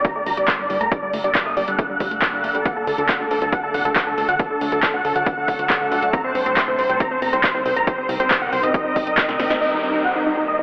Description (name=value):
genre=uplifting trance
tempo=138 BPM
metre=4/4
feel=straight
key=G harmonic minor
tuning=A4 = 436 Hz
part: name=dense compressed supersaw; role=melody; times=0.0-10.6 s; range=Eb4 to F#6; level=-20 LUFS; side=equal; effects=sidechain pumping, low-pass filter, tape echo
part: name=tight sequenced synth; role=arpeggios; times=0.0-9.6 s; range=D3 to C4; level=-29 LUFS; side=equal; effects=chorus, cassette tape, sidechain pumping, tape echo
part: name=plucky analog bass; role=bass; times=0.0-10.6 s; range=G1 to Eb2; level=-31 LUFS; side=equal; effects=sidechain pumping
part: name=electronic kick drum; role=drums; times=0.0-9.3 s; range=none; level=-23 LUFS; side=equal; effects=overdrive
part: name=punchy analog drum machine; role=drums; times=0.0-9.6 s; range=handclaps, hi-hat, snare drum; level=-23 LUFS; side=equal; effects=overdrive
part: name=plucky unison lead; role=second line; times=9.6-10.6 s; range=Eb4 to F#5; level=-26 LUFS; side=equal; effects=none
part: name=downlifter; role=sound effects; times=9.6-10.6 s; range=none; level=-29 LUFS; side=equal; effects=none
room=moderate recital hall reverb, RT60 1.4 s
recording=telephone sound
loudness=-17 LUFS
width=side -32 dB against mid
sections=0.0-9.6 A section; 9.6-10.6 B section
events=drum fill 9.2-9.6; band accent 9.5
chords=0.0 Gmadd9; 2.7 D; 6.1 Cm7; 9.6 Eb6